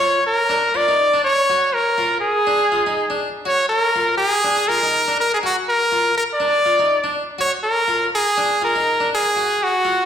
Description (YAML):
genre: afrobeat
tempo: 122 BPM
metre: 4/4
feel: swing 56% on 16ths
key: unclear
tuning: A4 = 440 Hz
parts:
  - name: brilliant trumpet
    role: melody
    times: 0.0-10.1 s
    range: Gb4 to D5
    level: -16 LUFS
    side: equal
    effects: slapback echo
  - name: harpsichord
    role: arpeggios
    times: 0.0-10.0 s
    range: D4 to Gb4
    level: -26 LUFS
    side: left 2 dB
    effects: slapback echo
room: moderate club reverb, RT60 0.6 s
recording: live gig heard through the venue's PA, recital hall reverb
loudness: -16 LUFS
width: side -8 dB against mid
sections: 0.0-10.1 A section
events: none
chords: 0.5 Dmaj7(no3); 1.5 Fmadd11; 2.5 D(b5, no3); 3.5 Fmadd11; 4.4 Bb; 5.4 Gbmaj7; 6.4 N.C.; 7.4 Fmadd11; 8.4 Bb; 9.4 Fm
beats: 0.00 0.49 0.99 | 1.48 1.97 2.47 2.96 | 3.45 3.95 4.44 4.93 | 5.42 5.92 6.41 6.90 | 7.39 7.88 8.37 8.87 | 9.36 9.85